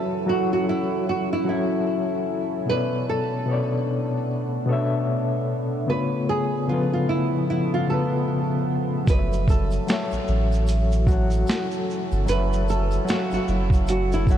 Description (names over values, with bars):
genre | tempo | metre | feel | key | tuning
lo-fi hip hop | 75 BPM | 4/4 | swing 59% on 16ths | unclear | A4 = 442 Hz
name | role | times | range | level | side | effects
nylon-string guitar | melody | 0.0-14.4 s | E4 to B4 | -27 LUFS | right 3 dB | lush chorus, ping-pong delay
overdriven reed electric piano | accompaniment | 0.0-14.4 s | B2 to F#5 | -25 LUFS | left 2 dB | fast tremolo, cassette tape
deep dark ambient pad | sustained chords | 0.0-14.4 s | C#3 to A4 | -30 LUFS | equal | chorus, built-in reverb
soft dub sub bass | bass | 9.1-14.4 s | F#1 to A1 | -23 LUFS | right 1 dB | none
boom bap sampler-style drum kit | drums | 9.1-14.4 s | hi-hat, kick drum, shaker, snare drum | -24 LUFS | right 1 dB | vintage 12-bit sampler grit
tube shaker | percussion | 9.1-14.4 s | none | -48 LUFS | right 6 dB | none
room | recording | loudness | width
moderate huge ambient reverb, RT60 4.5 s | dreamy mix soaked in reverb, cassette tape | -21 LUFS | side -10 dB against mid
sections
0.0-14.4 A section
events
none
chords
0.0 F#m7; 2.7 Bm9; 5.9 C#7b13; 9.1 F#m7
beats
0.28 1.08 1.88 | 2.68 3.48 4.28 5.08 | 5.88 6.68 7.48 8.28 | 9.08 9.88 10.68 11.48 | 12.28 13.08 13.88